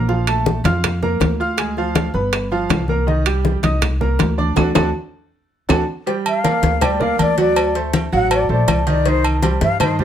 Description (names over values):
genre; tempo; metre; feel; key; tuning
latin, salsa; 161 BPM; 4/4; straight; G minor; A4 = 440 Hz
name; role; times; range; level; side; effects
bright baby grand piano; accompaniment; 0.0-10.0 s; Eb3 to F6; -20 LUFS; right 2 dB; none
upright bass; bass; 0.0-10.0 s; G1 to G2; -20 LUFS; equal; none
bongos and cowbell; percussion; 0.1-10.0 s; none; -25 LUFS; left 7 dB; none
congas; percussion; 0.1-10.0 s; none; -22 LUFS; left 2 dB; none
claves; percussion; 0.3-10.0 s; none; -30 LUFS; left 2 dB; none
timbales and agogo bells; percussion; 0.3-10.0 s; none; -23 LUFS; right 5 dB; none
mellow concert flute; melody; 6.3-10.0 s; C5 to F#5; -20 LUFS; left 3 dB; none
room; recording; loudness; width
light reverb; close, detailed microphones; -15 LUFS; side -10 dB against mid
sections
0.0-6.1 A section; 6.1-10.0 B section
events
drum fill 4.6-6.1; band accent 4.6-6.1; flute solo 6.1-10.0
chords
0.1 Bbmaj7; 1.6 Ddim; 2.3 G7; 3.1 Cm7; 4.6 D; 6.1 Gm7; 7.6 D7; 9.1 Cm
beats
| 0.09 0.46 0.84 1.21 | 1.58 1.96 2.33 2.71 | 3.08 3.45 3.83 4.20 | 4.58 4.95 5.32 5.70 | 6.07 6.44 6.82 7.19 | 7.56 7.94 8.31 8.68 | 9.06 9.43 9.80